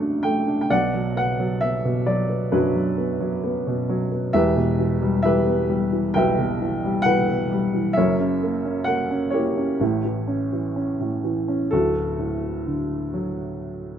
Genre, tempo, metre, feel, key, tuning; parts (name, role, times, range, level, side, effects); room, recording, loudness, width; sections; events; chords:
classical, lyrical solo piano; 66 BPM; 4/4; rubato; B minor; A4 = 439 Hz
dark upright piano; solo; 0.0-14.0 s; D1 to G5; -20 LUFS; equal
light reverb; close, detailed microphones; -20 LUFS; side -9 dB against mid
0.0-11.7 A section; 11.7-14.0 B section
0.0 Bm7; 0.7 Bmadd11; 4.3 Em; 8.0 F#7; 9.8 A7; 11.7 D